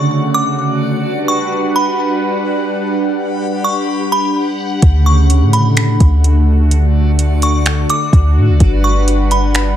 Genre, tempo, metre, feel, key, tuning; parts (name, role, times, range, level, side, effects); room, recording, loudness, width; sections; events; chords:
hip hop, atmospheric cloud-rap; 127 BPM; 4/4; half-time; D major; A4 = 441 Hz
delicate synth tine bell; melody; 0.0-9.8 s; B5 to D6; -19 LUFS; equal; chorus, ping-pong delay
warm analog pad; sustained chords; 0.0-9.8 s; C#3 to F#5; -17 LUFS; equal; lush chorus, sidechain pumping
backwards swelling texture; texture; 0.0-9.8 s; F#4 to C#7; -24 LUFS; left 1 dB; built-in reverb
clean 808-style bass; bass; 4.8-9.7 s; G1 to A2; -11 LUFS; equal
smooth R&B drum kit; drums; 4.8-9.7 s; finger snaps, hi-hat, kick drum; -14 LUFS; equal; overdrive
light reverb, digital ambience; -11 LUFS; side -11 dB against mid
0.0-9.8 A section
0.0 Dmaj7; 1.0 Gmaj7; 4.8 Dmaj7; 8.6 Gmaj7